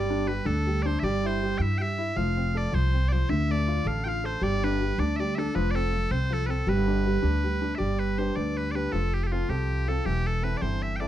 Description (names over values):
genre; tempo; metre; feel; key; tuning
celtic folk; 106 BPM (dotted quarters); 6/8; straight; G mixolydian; A4 = 439 Hz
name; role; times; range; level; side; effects
loud bright bagpipes; melody; 0.0-11.1 s; F4 to G5; -31 LUFS; right 1 dB; none
warm baby grand piano; accompaniment; 0.0-11.1 s; D3 to B4; -30 LUFS; equal; none
upright bass; bass; 0.0-11.1 s; E1 to G2; -27 LUFS; equal; none
room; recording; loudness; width
light reverb; dark, warm production; -24 LUFS; side -12 dB against mid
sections
0.0-7.8 A section; 7.8-11.1 B section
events
none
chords
0.0 Gsus2; 1.0 C/G; 2.2 F; 3.3 Dm; 4.4 G; 5.5 F; 6.7 G; 8.9 F; 10.1 C6/E